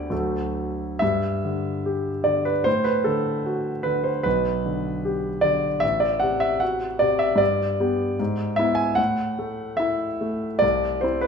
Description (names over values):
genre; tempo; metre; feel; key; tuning
classical, romantic character piece for solo piano; 75 BPM; 2/4; uneven beats, rubato; G major; A4 = 441 Hz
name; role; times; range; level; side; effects
warm concert grand piano; solo; 0.0-11.3 s; A1 to G#5; -21 LUFS; equal; none
room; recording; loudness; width
moderate large studio reverb, RT60 1.2 s; minimal, uncompressed stereo recording; -21 LUFS; side -6 dB against mid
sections
0.0-1.0 A section; 1.0-11.3 B section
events
none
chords
0.1 D; 1.0 G5; 2.7 D/A; 4.3 G/B; 5.8 F#dim/A; 7.4 G; 8.2 E7/G#; 9.0 A5; 10.6 Cadd9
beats
0.11 | 1.01 1.85 | 2.66 3.45 | 4.25 5.05 | 5.83 6.61 | 7.40 8.19 | 8.98 9.80 | 10.63